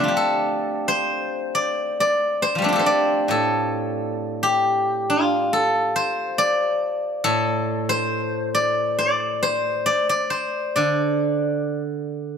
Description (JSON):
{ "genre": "chinese traditional, Chinese solo plucked strings", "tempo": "67 BPM", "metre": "4/4", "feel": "rubato", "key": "D yu mode", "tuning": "A4 = 441 Hz", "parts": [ { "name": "steel-string zither", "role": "solo", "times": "0.0-12.4 s", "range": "A2 to D5", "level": "-19 LUFS", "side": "equal", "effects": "none" } ], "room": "moderate recital hall reverb, RT60 1.6 s", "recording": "close, detailed microphones", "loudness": "-19 LUFS", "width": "side -7 dB against mid", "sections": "0.1-12.4 A section", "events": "none", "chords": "none" }